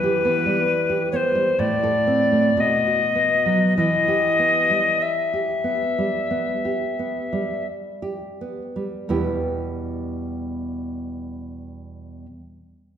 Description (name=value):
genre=romantic duo for recorder and classical guitar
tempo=40-69 BPM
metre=4/4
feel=rubato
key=E minor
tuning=A4 = 441 Hz
part: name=alto recorder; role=melody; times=0.0-7.7 s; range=B4 to E5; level=-20 LUFS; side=left 3 dB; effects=none
part: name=nylon-string guitar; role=accompaniment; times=0.0-12.3 s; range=E2 to A4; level=-24 LUFS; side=right 2 dB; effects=none
room=wet recital hall reverb, RT60 1.6 s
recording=recorded in a church or concert hall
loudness=-19 LUFS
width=side -9 dB against mid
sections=0.0-9.1 A section; 9.1-13.0 B section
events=slowing down 0.0-9.1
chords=0.0 Em; 1.6 Am; 2.6 B; 3.8 Em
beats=0.69 1.60 2.62 | 3.78 5.01 6.30 7.67 | 9.09 10.38 11.70